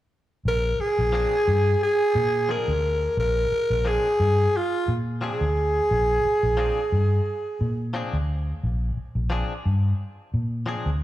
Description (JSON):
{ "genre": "blues", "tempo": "88 BPM", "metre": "4/4", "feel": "swing 54% on 16ths", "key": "Bb mixolydian", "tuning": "A4 = 442 Hz", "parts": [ { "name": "growling tenor saxophone", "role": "melody", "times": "0.5-7.9 s", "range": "F4 to Bb4", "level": "-22 LUFS", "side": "right 1 dB", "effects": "none" }, { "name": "vintage muted fingered electric bass", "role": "bass", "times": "0.5-11.0 s", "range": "Bb1 to Bb2", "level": "-24 LUFS", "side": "equal", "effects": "none" }, { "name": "direct-recorded clean electric guitar", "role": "stabs", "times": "1.1-10.9 s", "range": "F3 to Ab4", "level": "-34 LUFS", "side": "left 3 dB", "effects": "slapback echo" } ], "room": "light reverb, studio reverb", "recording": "live gig heard through the venue's PA, club ambience", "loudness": "-21 LUFS", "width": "side -14 dB against mid", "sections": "0.5-11.0 A section", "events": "none", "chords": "0.5 Bb9" }